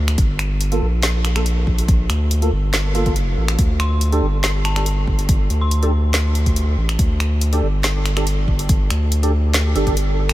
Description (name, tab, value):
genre	deep dubstep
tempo	141 BPM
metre	4/4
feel	half-time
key	unclear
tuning	A4 = 443 Hz
part	saturated sub bass	bass	0.0-10.3 s	G1 to D2	-18 LUFS	equal	tube saturation
part	deep house drum kit	drums	0.1-10.3 s	finger snaps, handclaps, hi-hat, snare drum	-24 LUFS	equal	none
part	electronic kick drum	drums	0.2-9.9 s	none	-18 LUFS	equal	none
part	percussive organ stab	stabs	0.7-10.0 s	Bb3 to A4	-26 LUFS	right 2 dB	ensemble chorus, dub echo
part	dark detuned synth bell	melody	3.8-6.0 s	A5 to C6	-32 LUFS	left 1 dB	chorus, dub echo
room	light reverb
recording	none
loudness	-16 LUFS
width	side -15 dB against mid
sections	0.0-10.3 A section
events	none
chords	0.0 Gm7; 3.6 Dsus4